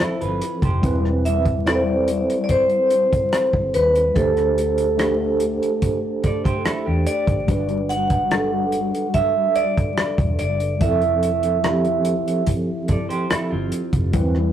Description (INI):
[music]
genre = lush 1970s-style soul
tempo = 72 BPM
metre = 4/4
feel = straight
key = unclear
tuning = A4 = 439 Hz
[part]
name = vibraphone with medium hard mallets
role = melody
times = 0.0-12.4 s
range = A4 to F#5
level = -21 LUFS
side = right 2 dB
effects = tape echo
[part]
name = mellow tine electric piano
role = accompaniment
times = 0.0-14.5 s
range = F3 to C5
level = -23 LUFS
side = equal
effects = medium stereo tremolo
[part]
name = electric guitar through a small old amp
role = riff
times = 0.0-1.0, 6.2-7.5, 12.9-14.1 s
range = C4 to D5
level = -28 LUFS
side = right 3 dB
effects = none
[part]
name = vintage muted fingered electric bass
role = bass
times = 0.0-14.5 s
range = E1 to E2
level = -25 LUFS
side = equal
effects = none
[part]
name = warm soul drum kit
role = drums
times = 0.0-14.5 s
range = hi-hat, kick drum, rim click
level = -22 LUFS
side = equal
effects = none
[sound]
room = moderate studio reverb, RT60 0.6 s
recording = rough rehearsal-room recording, tube saturation, vinyl crackle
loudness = -18 LUFS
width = side -10 dB against mid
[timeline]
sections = 0.0-14.5 A section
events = none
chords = 0.0 Fmaj7; 0.8 Cmaj7/E; 4.2 D7sus4; 7.5 Gmaj7; 10.8 Fmaj7